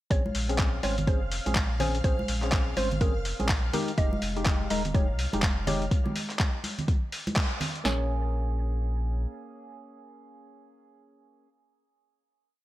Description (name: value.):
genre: deep house.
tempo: 124 BPM.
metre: 4/4.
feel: swing 60% on 16ths.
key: Bb dorian.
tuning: A4 = 440 Hz.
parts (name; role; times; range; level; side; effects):
mallet-like synth pluck; melody; 0.1-11.5 s; Bb4 to Eb5; -36 LUFS; right 1 dB; chorus, dub echo.
percussive organ stab; stabs; 0.1-11.5 s; Ab3 to C5; -35 LUFS; left 1 dB; chorus, sidechain pumping, dub echo.
sub bass with octave; bass; 0.1-9.3 s; Eb1 to C2; -30 LUFS; equal; tube saturation, sidechain pumping.
deep house drum kit; drums; 0.1-8.0 s; kick drum, snare drum; -26 LUFS; equal; none.
dusty soul sampler-style drum kit; drums; 0.1-7.8 s; handclaps, hi-hat; -32 LUFS; equal; overdrive.
string machine, violins; texture; 0.1-5.9 s; F5 to F6; -42 LUFS; equal; ensemble chorus, sidechain pumping.
congas; percussion; 0.3-7.7 s; none; -35 LUFS; right 1 dB; none.
room: light reverb.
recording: none.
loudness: -25 LUFS.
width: side -15 dB against mid.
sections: 0.1-7.8 groove; 7.8-11.7 final chord.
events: filter sweep on synth stab 0.1-5.9; band accent 7.4.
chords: 0.1 Bbm9; 3.7 Fm7; 7.8 Bbm7.